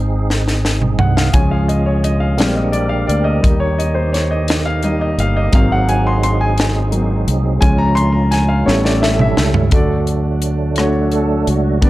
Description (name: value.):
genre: slow gospel.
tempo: 57 BPM (dotted quarters).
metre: 6/8.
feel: straight.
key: Db major.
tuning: A4 = 440 Hz.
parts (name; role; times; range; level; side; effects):
warm grand piano; accompaniment; 0.0-11.9 s; D3 to C6; -19 LUFS; left 1 dB; none.
tonewheel organ; sustained chords; 0.0-11.9 s; Gb3 to Bb4; -22 LUFS; right 3 dB; slow rotary speaker, chorus vibrato.
fingered electric bass; bass; 0.0-11.9 s; G1 to Eb2; -17 LUFS; equal; none.
crisp fusion drum kit; drums; 0.3-11.9 s; hi-hat, kick drum, rim click, snare drum, toms; -17 LUFS; equal; none.
room: little or no reverb.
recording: dark, warm production.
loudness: -13 LUFS.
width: side -16 dB against mid.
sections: 0.0-9.7 A section; 9.7-11.9 B section.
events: grand piano solo 0.0-9.7; drum fill 0.3-1.3, 8.7-9.7; tonewheel organ solo 9.7-11.9.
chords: 0.0 Ab; 1.3 Db; 2.4 Bb13; 3.4 Eb; 5.5 Ab7; 7.6 Db; 8.7 A7; 9.7 D.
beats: 0.29 | 1.34 2.39 | 3.43 4.48 | 5.53 6.58 | 7.63 8.67 | 9.72 10.77 | 11.82.